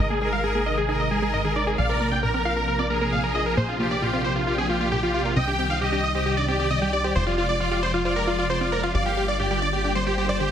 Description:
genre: trance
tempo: 134 BPM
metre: 4/4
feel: straight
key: unclear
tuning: A4 = 440 Hz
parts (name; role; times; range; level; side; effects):
- big supersaw lead; melody; 0.0-10.5 s; F4 to G5; -25 LUFS; right 1 dB; low-pass filter, tape echo
- plucky unison lead; second line; 0.0-10.5 s; F4 to G5; -34 LUFS; equal; none
- warm studio violin section; second line; 0.0-10.5 s; G4 to G5; -29 LUFS; equal; digital delay
- analog string pad; sustained chords; 0.0-10.3 s; C3 to F4; -30 LUFS; left 1 dB; ensemble chorus
- wide unison pluck; arpeggios; 0.0-10.4 s; G2 to F5; -31 LUFS; right 1 dB; vintage 12-bit sampler grit, tape echo
- plucky analog bass; bass; 0.0-10.5 s; F1 to C2; -29 LUFS; equal; none
room: moderate lush hall reverb, RT60 2.9 s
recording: dense, heavily limited modern master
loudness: -21 LUFS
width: side -9 dB against mid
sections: 0.0-10.5 A section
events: filter sweep on synth pluck 0.0-10.5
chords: 0.0 Ab; 1.8 Bbadd9; 5.4 Cm; 7.2 Fm; 8.9 Gm7

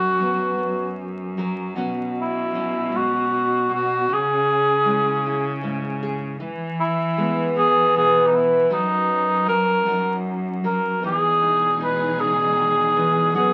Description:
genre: acoustic folk-pop ballad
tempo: 52 BPM (dotted quarters)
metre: 6/8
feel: straight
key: unclear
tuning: A4 = 441 Hz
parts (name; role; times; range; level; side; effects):
- mellow cor anglais; melody; 0.0-13.5 s; D#4 to B4; -22 LUFS; equal; none
- nylon-string guitar; accompaniment; 0.0-13.5 s; F#2 to B4; -28 LUFS; equal; none
- rich cello; bass; 0.0-13.5 s; E2 to E3; -30 LUFS; equal; none
- warm studio string section; sustained chords; 11.0-13.5 s; B2 to G#4; -34 LUFS; equal; none
room: wet club reverb, RT60 0.6 s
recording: very old 78 rpm record, vinyl crackle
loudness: -21 LUFS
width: mono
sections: 0.0-11.0 A section; 11.0-13.5 B section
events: none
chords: 0.0 F#sus4; 0.6 F#; 1.8 Bsus2; 4.1 C#m; 6.4 E; 8.7 B/F#; 9.9 F#6; 11.0 Emaj7

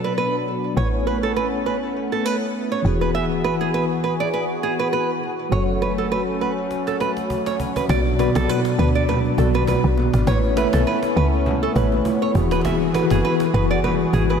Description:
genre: afrobeats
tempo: 101 BPM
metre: 4/4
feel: swing 55% on 16ths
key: B dorian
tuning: A4 = 440 Hz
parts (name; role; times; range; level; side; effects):
- mellow tine electric piano; accompaniment; 0.0-14.4 s; B2 to E5; -23 LUFS; left 2 dB; medium stereo tremolo
- warm analog pad; sustained chords; 0.0-14.4 s; E3 to G#4; -26 LUFS; left 1 dB; chorus
- nylon-string guitar; riff; 0.0-14.4 s; G#4 to E5; -24 LUFS; right 5 dB; ping-pong delay
- woody log drum bass; bass; 0.0-14.4 s; E1 to D2; -22 LUFS; equal; none
- cajon; drums; 6.7-14.4 s; none; -34 LUFS; equal; none
- congas and bongos; percussion; 7.9-14.4 s; none; -30 LUFS; left 2 dB; none
room: moderate lush hall reverb, RT60 2.6 s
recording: dreamy mix soaked in reverb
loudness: -18 LUFS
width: side -7 dB against mid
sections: 0.0-7.9 A section; 7.9-14.4 B section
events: drum fill 6.7-7.9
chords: 0.0 Bm; 0.8 Aadd9; 2.8 Eadd9; 5.5 F#m; 7.9 Bm; 10.3 Aadd9; 12.3 Eadd9

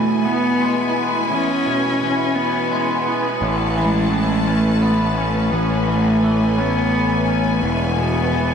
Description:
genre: rock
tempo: 57 BPM (dotted quarters)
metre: 6/8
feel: straight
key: A major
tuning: A4 = 440 Hz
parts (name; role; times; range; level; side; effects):
- warm cello; melody; 0.0-8.5 s; G#3 to C#4; -20 LUFS; equal; ping-pong delay
- clear studio string section; sustained chords; 0.0-8.5 s; E3 to A5; -26 LUFS; equal; none
- twangy electric guitar; arpeggios; 0.0-8.5 s; E2 to C#4; -22 LUFS; left 1 dB; lush chorus, ping-pong delay
- fuzz picked electric bass; bass; 3.4-8.5 s; E1 to A1; -20 LUFS; equal; overdrive
room: wet huge ambient reverb, RT60 7.3 s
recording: dreamy mix soaked in reverb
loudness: -16 LUFS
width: side -7 dB against mid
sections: 0.0-8.5 A section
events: none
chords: 0.0 E; 3.4 Aadd9; 7.6 E

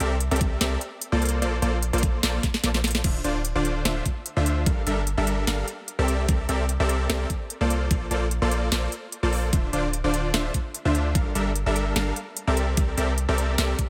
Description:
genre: future bass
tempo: 148 BPM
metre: 4/4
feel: swing 53% on 16ths, half-time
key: D minor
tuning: A4 = 440 Hz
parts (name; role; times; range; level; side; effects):
- supersaw stab; riff; 0.0-13.8 s; D3 to F5; -29 LUFS; equal; vintage 12-bit sampler grit, sidechain pumping, dub echo
- warm 808-style bass; bass; 0.0-13.7 s; D1 to D2; -28 LUFS; equal; sidechain pumping
- trap drum kit; drums; 0.0-13.9 s; crash cymbal, hi-hat, snare drum; -30 LUFS; equal; overdrive
- electronic kick drum; drums; 0.4-13.9 s; none; -27 LUFS; equal; overdrive
room: light reverb, digital ambience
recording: none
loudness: -25 LUFS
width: mono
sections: 0.0-3.0 A section; 3.0-13.9 A section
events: drop 0.0-3.0, 3.0-13.9; drum fill 2.4-3.0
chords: 0.0 C13; 1.2 Bbmaj7; 3.0 Dm9; 4.7 Gm9; 6.1 C13; 7.7 Bbmaj7; 9.5 Dm9; 11.2 Gm9; 12.6 C13

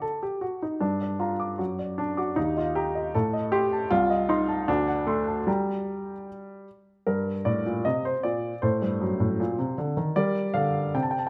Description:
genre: classical-period piano sonatina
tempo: 77 BPM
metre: 2/4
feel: straight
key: G minor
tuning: A4 = 440 Hz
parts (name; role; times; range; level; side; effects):
- warm baby grand piano; solo; 0.0-11.3 s; C2 to D6; -27 LUFS; equal; none
room: moderate recital hall reverb, RT60 1.3 s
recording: close, detailed microphones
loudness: -27 LUFS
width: mono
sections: 0.0-7.1 A section; 7.1-11.3 A section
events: none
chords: 0.0 N.C.; 0.8 Gm; 1.6 D/F#; 2.4 Eb; 3.1 Adim; 3.9 Adim/C; 4.7 D7; 5.5 Gm; 8.6 D7 (rootless); 10.2 Gm

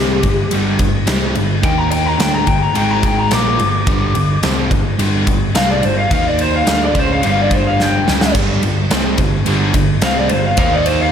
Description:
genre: hard rock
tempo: 107 BPM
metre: 4/4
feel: straight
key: G minor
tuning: A4 = 443 Hz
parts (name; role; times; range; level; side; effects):
- lead guitar through a small cranked amp; melody; 0.0-11.1 s; G4 to D6; -18 LUFS; left 2 dB; overdrive, slapback echo
- biting overdriven guitar; riff; 0.0-11.1 s; G2 to Eb4; -22 LUFS; left 8 dB; slapback echo
- overdriven semi-hollow guitar; riff; 0.0-11.1 s; G2 to Eb4; -20 LUFS; right 9 dB; slapback echo
- hollow-body short-scale picked electric bass; bass; 0.0-11.1 s; G1 to Eb2; -21 LUFS; equal; none
- huge arena drum kit; drums; 0.2-11.0 s; crash cymbal, kick drum, ride cymbal, snare drum, splash cymbal; -17 LUFS; equal; none
- sludgy distorted guitar; riff; 8.3-11.1 s; G2 to Eb4; -22 LUFS; right 1 dB; overdrive
room: moderate lush hall reverb, RT60 1.9 s, studio ambience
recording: big arena sound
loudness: -12 LUFS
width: side -8 dB against mid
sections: 0.0-11.1 A section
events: lead electric guitar solo 0.0-11.1; drum fill 7.8-8.3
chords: 0.0 G5; 1.6 Eb5; 2.2 G5; 2.8 Ab5; 3.3 Gm; 6.1 Eb5; 6.7 G5; 10.6 Eb5

